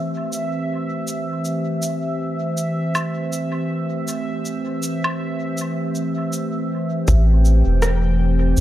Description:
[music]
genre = ambient dub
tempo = 80 BPM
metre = 4/4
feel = swing 58% on 16ths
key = A minor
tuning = A4 = 440 Hz
[part]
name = warbly tape-like pad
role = sustained chords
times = 0.0-8.6 s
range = E3 to C5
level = -23 LUFS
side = equal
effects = chorus, built-in reverb
[part]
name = bubbling stepped-filter texture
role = texture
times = 0.0-8.6 s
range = E5 to G5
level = -30 LUFS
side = right 1 dB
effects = chorus, built-in reverb
[part]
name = electronic shaker, woodblock and rim click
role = drums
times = 0.3-8.6 s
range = none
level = -27 LUFS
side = equal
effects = dub echo
[part]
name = round analog bass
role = bass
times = 7.1-8.6 s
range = E1 to A1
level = -15 LUFS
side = equal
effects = none
[part]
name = electronic kick drum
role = drums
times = 7.1-7.3 s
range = none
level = -20 LUFS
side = equal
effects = none
[sound]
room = light reverb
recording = none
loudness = -19 LUFS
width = side -13 dB against mid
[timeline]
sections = 0.0-7.1 A section; 7.1-8.6 B section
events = none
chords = 0.0 Am7

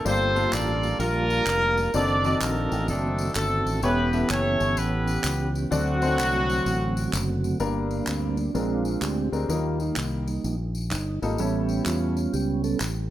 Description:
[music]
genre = uptempo gospel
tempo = 127 BPM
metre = 4/4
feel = swing 65% on 8ths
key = unclear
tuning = A4 = 440 Hz
[part]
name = mellow horn section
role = melody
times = 0.0-7.1 s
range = F#3 to D5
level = -25 LUFS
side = equal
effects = slapback echo
[part]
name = warm grand piano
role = accompaniment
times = 0.0-12.1 s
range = G2 to A5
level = -29 LUFS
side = left 3 dB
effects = none
[part]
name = mellow tonewheel organ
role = sustained chords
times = 0.1-12.8 s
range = D3 to A4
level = -29 LUFS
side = right 3 dB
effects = fast rotary speaker
[part]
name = fingered electric bass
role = bass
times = 0.1-13.1 s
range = E1 to E2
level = -28 LUFS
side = equal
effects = none
[part]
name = tambourine and handclaps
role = percussion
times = 0.1-12.9 s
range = none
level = -34 LUFS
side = equal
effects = none
[sound]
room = light reverb, studio reverb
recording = none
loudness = -22 LUFS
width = side -13 dB against mid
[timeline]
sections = 0.0-7.6 A section; 7.6-13.1 B section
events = tonewheel organ solo 7.6-13.1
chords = 0.1 Gm9; 1.9 D7b9/F#; 3.8 A9/E; 5.7 D7; 7.6 Gm; 8.5 Bb9; 9.5 Eb; 11.4 A7

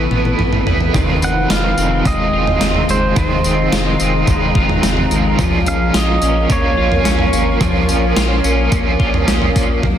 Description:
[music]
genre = dream pop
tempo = 108 BPM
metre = 4/4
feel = straight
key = unclear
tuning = A4 = 440 Hz
[part]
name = pedal steel guitar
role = melody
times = 0.0-9.2 s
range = B4 to F#5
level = -22 LUFS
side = right 2 dB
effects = digital delay
[part]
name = biting overdriven guitar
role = accompaniment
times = 0.0-10.0 s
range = F2 to B4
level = -20 LUFS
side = right 4 dB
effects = tremolo, analog chorus
[part]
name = granular cloud pad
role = sustained chords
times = 0.0-10.0 s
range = A#3 to D#6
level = -23 LUFS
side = right 1 dB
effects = built-in reverb, low-pass filter
[part]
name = clean electric guitar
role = arpeggios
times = 0.0-10.0 s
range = Eb3 to F4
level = -20 LUFS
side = left 6 dB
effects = analog chorus, low-pass filter, digital delay
[part]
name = round analog bass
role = bass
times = 0.0-10.0 s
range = F1 to B1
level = -20 LUFS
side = equal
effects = none
[part]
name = gated 80s digital drum machine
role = drums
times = 0.1-10.0 s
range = kick drum, snare drum, tambourine, toms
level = -18 LUFS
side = right 1 dB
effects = gated reverb, gated reverb snare, overdrive
[sound]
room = light reverb, digital ambience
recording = dense, heavily limited modern master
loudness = -12 LUFS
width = side -10 dB against mid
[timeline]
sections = 0.9-9.8 A section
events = drum fill 0.0-0.9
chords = 0.0 Asus2; 0.9 Fm7; 5.4 A#m

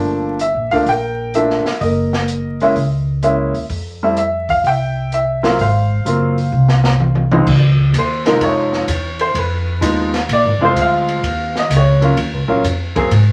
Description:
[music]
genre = jazz piano trio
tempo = 127 BPM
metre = 4/4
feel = swing 68% on 8ths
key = Db major from 7.5 s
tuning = A4 = 439 Hz
[part]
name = clear upright piano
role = melody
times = 0.0-13.1 s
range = Db2 to G5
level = -18 LUFS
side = equal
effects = none
[part]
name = upright bass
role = bass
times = 0.0-13.3 s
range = F1 to Ab2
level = -19 LUFS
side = equal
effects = none
[part]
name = open jazz drum kit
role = drums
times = 0.4-13.3 s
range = crash cymbal, hi-hat, kick drum, ride cymbal, snare drum, toms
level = -25 LUFS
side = equal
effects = none
[sound]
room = wet studio ambience, RT60 0.5 s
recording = vinyl crackle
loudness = -16 LUFS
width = mono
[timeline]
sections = 0.0-7.5 A section; 7.5-13.3 B section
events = drum fill 6.5-7.5; upright piano solo 7.5-13.3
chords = 0.0 Gm7; 1.8 Gb9; 3.7 Fmaj7sus2; 5.6 Ab13; 7.5 Dbmaj9; 9.4 Fm7b5; 10.3 Bb7; 11.2 Ebm9

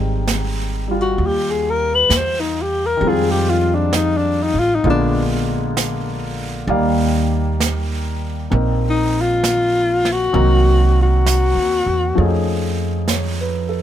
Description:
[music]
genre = jazz ballad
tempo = 66 BPM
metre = 4/4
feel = swing 67% on 8ths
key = F minor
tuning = A4 = 442 Hz
[part]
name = warm grand piano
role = accompaniment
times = 0.0-13.8 s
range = D3 to F5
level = -22 LUFS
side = left 1 dB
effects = none
[part]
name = upright bass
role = bass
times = 0.0-13.8 s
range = Ab1 to F2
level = -19 LUFS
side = right 1 dB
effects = none
[part]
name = jazz brush drum kit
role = drums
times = 0.3-13.8 s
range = brushed snare drum, hi-hat, snare drum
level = -26 LUFS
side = right 4 dB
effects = none
[part]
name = breathy alto saxophone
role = melody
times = 1.0-12.4 s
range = D4 to C5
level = -17 LUFS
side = left 3 dB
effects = none
[sound]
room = little or no reverb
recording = close, detailed microphones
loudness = -15 LUFS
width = side -10 dB against mid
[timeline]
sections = 0.0-13.8 A section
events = alto saxophone solo 0.0-13.8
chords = 0.0 Abmaj7; 3.0 Fm9; 4.8 Bb7b9; 6.7 Ebmaj9; 10.3 Cm7b5; 12.2 F7alt

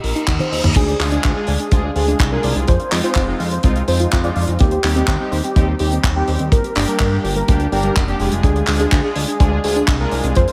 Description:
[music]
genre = italo disco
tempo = 125 BPM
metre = 4/4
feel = straight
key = unclear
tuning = A4 = 438 Hz
[part]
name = unison lead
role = melody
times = 0.0-10.5 s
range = G4 to D5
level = -26 LUFS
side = equal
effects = delay, shimmer reverb
[part]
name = soft round pluck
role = arpeggios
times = 0.0-10.5 s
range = G3 to F5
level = -28 LUFS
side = equal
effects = chorus, delay, shimmer reverb
[part]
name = chorused synth bass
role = bass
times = 0.0-10.5 s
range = F1 to G2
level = -22 LUFS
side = equal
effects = none
[part]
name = damped 70s drum kit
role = drums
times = 0.0-10.5 s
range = crash cymbal, handclaps, hi-hat, toms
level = -26 LUFS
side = equal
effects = small room ambience
[part]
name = reverse cymbal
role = sound effects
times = 0.0-0.8 s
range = none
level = -28 LUFS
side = equal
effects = none
[part]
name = kick drum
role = drums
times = 0.3-10.5 s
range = none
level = -18 LUFS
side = equal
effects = small room ambience
[part]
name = analog synth brass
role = stabs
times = 1.0-10.3 s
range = G3 to Bb4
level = -26 LUFS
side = equal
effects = chorus, delay, shimmer reverb
[sound]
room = moderate plate reverb, RT60 1.8 s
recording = dreamy mix soaked in reverb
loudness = -17 LUFS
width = mono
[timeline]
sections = 0.8-10.5 A section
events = reverse cymbal 0.0-0.8; drum fill 0.3-0.8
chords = 0.0 Eb5; 0.8 Ddim; 2.7 Fm7; 4.6 Cm/Eb; 6.5 Gm; 8.4 Ddim

